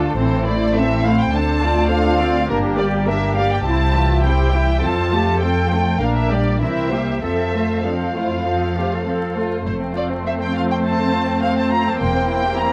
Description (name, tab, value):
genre	quick classical-period movement for string orchestra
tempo	103 BPM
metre	4/4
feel	straight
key	F major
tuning	A4 = 444 Hz
part	muted studio violin section	melody	0.0-12.7 s	A4 to Bb5	-25 LUFS	equal	none
part	muted chamber violin section	second line	0.0-12.7 s	A3 to E5	-27 LUFS	equal	none
part	muted studio viola section	accompaniment	0.0-12.7 s	E3 to E4	-25 LUFS	equal	none
part	muted chamber double bass section	bass	0.0-12.5 s	E1 to F2	-23 LUFS	equal	none
part	muted chamber cello section	bass	0.2-12.7 s	E2 to A4	-27 LUFS	equal	none
room	moderate recital hall reverb, RT60 1.5 s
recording	close, detailed microphones, vinyl crackle, faint mains hum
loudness	-19 LUFS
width	mono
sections	0.0-9.7 A section; 9.7-12.7 A section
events	none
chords	0.2 Am; 1.3 Dm7; 2.5 Gm; 3.7 C; 4.8 F; 6.0 Gm/Bb; 6.6 C7; 7.2 F; 12.0 C7/E